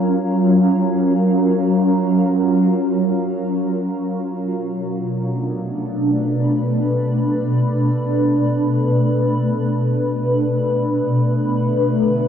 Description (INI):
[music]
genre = ambient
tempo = free time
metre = none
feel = none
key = unclear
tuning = A4 = 440 Hz
[part]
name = shimmering ambient pad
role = solo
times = 0.0-12.3 s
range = Cb3 to Cb5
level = -16 LUFS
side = equal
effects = chorus, built-in reverb, phaser, tape echo
[sound]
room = wet huge ambient reverb, RT60 7.7 s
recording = dark, warm production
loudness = -16 LUFS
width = side -8 dB against mid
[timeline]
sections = 0.0-12.3 A section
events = none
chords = 0.0 Gbmaj7; 4.3 Cbm7; 11.4 D5